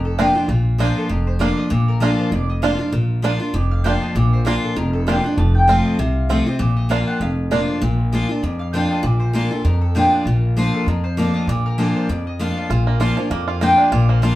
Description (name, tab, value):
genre	bluegrass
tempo	196 BPM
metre	4/4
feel	swing 55% on 8ths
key	Bb major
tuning	A4 = 440 Hz
part	mandolin	melody	0.0-14.4 s	F4 to A5	-23 LUFS	equal	none
part	picked steel-string acoustic guitar	accompaniment	0.0-14.4 s	F2 to F4	-20 LUFS	left 1 dB	none
part	upright bass	bass	0.0-14.3 s	F1 to F2	-20 LUFS	equal	none
part	bluegrass banjo	melody	0.2-7.6, 12.7-14.4 s	F3 to F4	-24 LUFS	right 5 dB	none
room	wet studio reverb, RT60 0.5 s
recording	band playing live in one room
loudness	-16 LUFS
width	side -15 dB against mid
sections	0.0-7.8 A section; 7.8-14.4 A section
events	none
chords	0.0 Bb; 5.4 F; 6.6 Bb